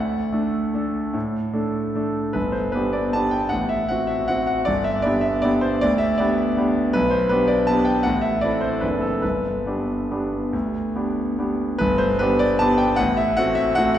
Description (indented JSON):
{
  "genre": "classical, piano waltz",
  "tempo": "135-168 BPM",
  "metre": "3/4",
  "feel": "rubato",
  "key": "G major",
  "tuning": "A4 = 440 Hz",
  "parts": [
    { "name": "bright concert grand piano", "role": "solo", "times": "0.0-14.0 s", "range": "F#1 to A5", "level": "-19 LUFS", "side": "equal", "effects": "none" }
  ],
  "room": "wet concert hall reverb, RT60 1.9 s",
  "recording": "heard from further back in the room",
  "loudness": "-19 LUFS",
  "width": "side -11 dB against mid",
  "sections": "0.0-11.8 A section; 11.8-14.0 A section",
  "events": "none",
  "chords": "0.0 D; 2.4 G; 3.5 F#dim/A; 4.7 G; 6.9 G/B; 8.1 Am; 8.8 D7/F#; 9.2 G; 13.0 F#dim/A"
}